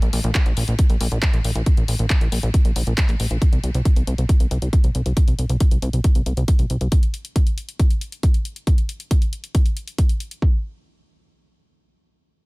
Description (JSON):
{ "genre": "uplifting trance", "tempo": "137 BPM", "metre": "4/4", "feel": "straight", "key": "unclear", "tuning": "A4 = 437 Hz", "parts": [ { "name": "plucky analog bass", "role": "bass", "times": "0.0-6.9 s", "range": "Bb1 to C2", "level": "-21 LUFS", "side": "equal", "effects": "tube saturation, sidechain pumping" }, { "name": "house drum kit", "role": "drums", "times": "0.0-10.4 s", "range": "handclaps, hi-hat", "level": "-29 LUFS", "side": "left 2 dB", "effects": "none" }, { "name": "electronic kick drum", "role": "drums", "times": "0.3-10.5 s", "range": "none", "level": "-17 LUFS", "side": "equal", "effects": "none" } ], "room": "digital ambience", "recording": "none", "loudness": "-17 LUFS", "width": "side -27 dB against mid", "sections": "0.0-10.4 A section; 10.4-12.5 B section", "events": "filter sweep on analog synth bass 0.0-6.9", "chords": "none", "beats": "0.35 0.79 1.23 | 1.66 2.10 2.54 2.98 | 3.42 3.85 4.29 4.73 | 5.17 5.61 6.04 6.48 | 6.92 7.36 7.79 8.23 | 8.67 9.11 9.55 9.98 | 10.42" }